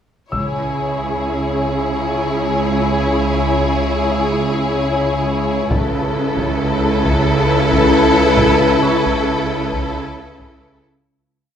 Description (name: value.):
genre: cinematic, suspense film score.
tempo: 67 BPM.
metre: 3/4.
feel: straight.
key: C# minor.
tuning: A4 = 441 Hz.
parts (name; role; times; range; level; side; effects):
warm symphonic violin section; melody; 0.3-10.8 s; B4 to C#5; -23 LUFS; left 4 dB; none.
rich studio violin section; second line; 0.3-10.8 s; G#4 to A4; -21 LUFS; left 2 dB; none.
warm studio viola section; accompaniment; 0.3-10.8 s; E4; -22 LUFS; equal; none.
clear symphonic double bass section; bass; 0.3-10.8 s; C#2; -24 LUFS; right 4 dB; none.
warm symphonic cello section; bass; 0.3-10.8 s; C#3; -22 LUFS; right 1 dB; none.
organ-like drone; drone; 1.1-11.0 s; C#2; -23 LUFS; right 1 dB; ensemble chorus, built-in reverb.
taiko ensemble; drums; 0.3-11.3 s; none; -24 LUFS; equal; none.
timpani; percussion; 0.3-1.6 s; C#3; -30 LUFS; equal; none.
clear concert grand piano; texture; 0.3-11.1 s; C#6 to E6; -31 LUFS; left 2 dB; none.
room: wet recital hall reverb, RT60 1.6 s.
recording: recorded in a church or concert hall.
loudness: -14 LUFS.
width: side -8 dB against mid.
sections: 0.3-11.1 A section.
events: fade-out 8.4-11.1.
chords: 0.3 C#m.